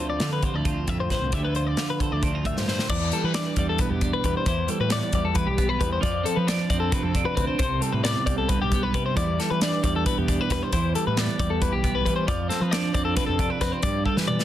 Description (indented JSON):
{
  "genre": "math rock and midwest emo",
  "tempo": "268 BPM (eighths)",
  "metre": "7/8",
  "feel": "straight",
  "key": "C major",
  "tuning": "A4 = 441 Hz",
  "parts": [
    { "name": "twelve-string electric guitar", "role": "accompaniment", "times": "0.0-14.4 s", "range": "G2 to B4", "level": "-28 LUFS", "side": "right 6 dB", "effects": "warbly pitch drift" },
    { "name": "twelve-string electric guitar", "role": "arpeggios", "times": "0.0-14.4 s", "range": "G4 to E5", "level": "-27 LUFS", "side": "left 6 dB", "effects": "slapback echo, plate reverb" },
    { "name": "fuzz fingered electric bass", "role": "bass", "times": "0.0-14.4 s", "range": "B1 to F3", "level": "-28 LUFS", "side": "equal", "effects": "overdrive" },
    { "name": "modern studio drum kit", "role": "drums", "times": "0.2-14.4 s", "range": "crash cymbal, hi-hat, kick drum, snare drum, toms", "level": "-27 LUFS", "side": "equal", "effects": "none" }
  ],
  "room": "light reverb",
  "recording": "dense, heavily limited modern master, lossy compression artefacts",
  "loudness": "-22 LUFS",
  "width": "side -12 dB against mid",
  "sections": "0.0-2.9 A section; 2.9-14.4 B section",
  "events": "drum fill 2.6-2.9, 14.1-14.4",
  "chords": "0.0 Dm7; 2.9 Em7; 4.5 Cmaj7/E; 6.0 F6; 7.6 C5; 9.2 Em7; 10.7 Cmaj7/E; 12.3 F6; 13.8 G7",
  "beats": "0.21 0.43 0.66 0.88 1.11 | 1.33 1.55 1.78 2.00 2.23 2.45 2.68 | 2.90 3.12 3.35 3.57 3.80 4.02 4.25 | 4.47 4.69 4.92 5.14 5.36 5.59 5.81 | 6.04 6.26 6.48 6.71 6.93 7.15 7.38 | 7.60 7.82 8.05 8.27 8.49 8.72 8.94 | 9.16 9.39 9.61 9.84 10.06 10.28 10.50 | 10.73 10.95 11.17 11.39 11.62 11.84 12.06 | 12.28 12.51 12.73 12.95 13.17 13.39 13.62 | 13.84 14.06 14.28"
}